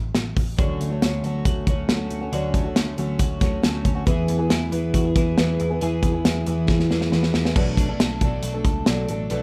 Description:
jangly indie pop; 138 BPM; 4/4; straight; A4 = 442 Hz
vintage muted picked electric bass; bass; 0.0-9.4 s; A1 to E2; -31 LUFS; equal
modern studio drum kit; drums; 0.1-9.4 s; crash cymbal, hi-hat, kick drum, snare drum; -24 LUFS; equal
fingerpicked twelve-string acoustic guitar; accompaniment; 0.6-9.4 s; B2 to A4; -27 LUFS; equal
twelve-string electric guitar; arpeggios; 0.6-9.4 s; B2 to A4; -33 LUFS; equal; lush chorus
light reverb; rough home demo mix; -22 LUFS; mono
0.0-7.6 A section; 7.6-9.4 B section
drum fill 6.7-7.6
0.0 N.C.; 0.6 Dmaj7; 4.1 E; 7.6 Bm7

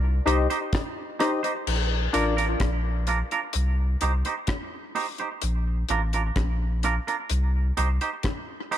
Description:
dub reggae; 64 BPM; 4/4; straight; Bb major; A4 = 438 Hz
soft dub sub bass; bass; 0.0-8.0 s; A1 to C2; -24 LUFS; equal
twangy electric guitar; accompaniment; 0.3-8.8 s; D4 to C5; -29 LUFS; right 6 dB; tape echo
percussive organ stab; stabs; 0.3-2.3 s; D4 to Eb5; -28 LUFS; left 4 dB; chorus, tape echo
deep reggae drum kit; drums; 0.3-8.8 s; crash cymbal, hi-hat, kick drum, rim click; -30 LUFS; left 2 dB
light reverb, small room ambience; -23 LUFS; side -11 dB against mid
0.0-1.7 A section; 1.7-8.8 B section
0.0 Cm; 1.7 Bb; 3.5 Cm; 5.4 Bb; 7.3 Cm

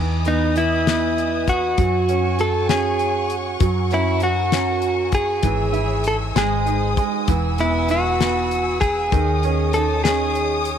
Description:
six-eight pop ballad; 65 BPM (dotted quarters); 6/8; straight; A4 = 435 Hz
bright upright piano; accompaniment; 0.0-10.8 s; D#3 to E4; -24 LUFS; right 13 dB
warm studio string section; sustained chords; 0.0-10.8 s; A#4 to E6; -28 LUFS; left 2 dB
woody fretless electric bass; bass; 0.0-10.8 s; E1 to F#2; -24 LUFS; left 1 dB
damped 70s drum kit; drums; 0.2-10.8 s; hi-hat, kick drum, snare drum; -23 LUFS; left 4 dB
direct-recorded clean electric guitar; melody; 0.3-10.7 s; D#4 to A4; -21 LUFS; left 1 dB
moderate spring reverb, RT60 2.4 s; 1960s-style stereo; -17 LUFS; side -8 dB against mid
0.0-10.8 A section
0.0 Emaj7; 1.8 F#sus2; 3.6 F#add9; 5.4 C#m/G#; 6.4 G#; 7.3 Eadd9; 9.1 G#sus4/D#

